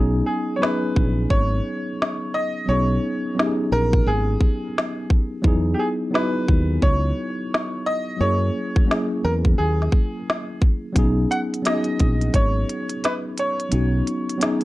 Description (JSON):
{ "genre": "lo-fi hip hop", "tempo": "87 BPM", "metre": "4/4", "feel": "swing 63% on 16ths", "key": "B major", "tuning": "A4 = 443 Hz", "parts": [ { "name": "mellow tine electric piano", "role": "accompaniment", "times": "0.0-14.6 s", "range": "F#3 to G#4", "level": "-24 LUFS", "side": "left 1 dB", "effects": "medium stereo tremolo" }, { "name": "fingered electric bass", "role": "bass", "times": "0.0-14.0 s", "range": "G#1 to F#2", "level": "-21 LUFS", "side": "equal", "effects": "none" }, { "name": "bright upright piano", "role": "melody", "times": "0.3-14.6 s", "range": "G4 to F#5", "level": "-26 LUFS", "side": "right 1 dB", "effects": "none" }, { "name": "organic electronic drum kit", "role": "drums", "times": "0.6-14.6 s", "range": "hi-hat, kick drum, snare drum", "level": "-20 LUFS", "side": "equal", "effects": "none" } ], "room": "moderate studio reverb, RT60 0.6 s", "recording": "none", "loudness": "-19 LUFS", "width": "side -18 dB against mid", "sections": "0.0-14.6 A section", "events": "break 0.0-11.0", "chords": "0.0 B69; 5.4 Emaj9; 8.2 F#7; 11.0 B69", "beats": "0.61 1.30 1.99 | 2.68 3.37 4.06 4.75 | 5.44 6.13 6.82 7.51 | 8.20 8.89 9.58 10.27 | 10.96 11.65 12.34 13.03 | 13.72 14.41" }